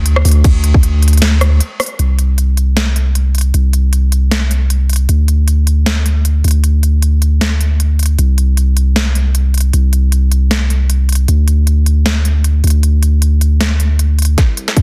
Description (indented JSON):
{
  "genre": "future bass",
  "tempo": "155 BPM",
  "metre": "4/4",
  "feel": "swing 55% on 16ths, half-time",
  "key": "unclear",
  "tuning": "A4 = 440 Hz",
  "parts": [
    { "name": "long sustained 808-style bass", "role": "bass", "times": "0.0-14.8 s", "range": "C2 to D2", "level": "-13 LUFS", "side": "equal", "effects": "sidechain pumping, high-pass filter" },
    { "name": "trap drum kit", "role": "drums", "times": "0.1-14.8 s", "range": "hi-hat, ride cymbal, rim click, snare drum", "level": "-20 LUFS", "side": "equal", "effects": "high-pass filter on hats, small room ambience, high-pass filter on snare, high-pass filter on cymbals" },
    { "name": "electronic kick drum", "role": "drums", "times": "0.4-0.8, 14.4-14.8 s", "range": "none", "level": "-13 LUFS", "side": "equal", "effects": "small room ambience" }
  ],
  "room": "little or no reverb",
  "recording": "dense, heavily limited modern master",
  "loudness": "-13 LUFS",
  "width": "mono",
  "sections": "0.0-2.0 A section; 2.0-14.4 B section",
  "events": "drop 0.0-2.0; break 1.6-2.0; drum fill 14.4-14.8",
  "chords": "none"
}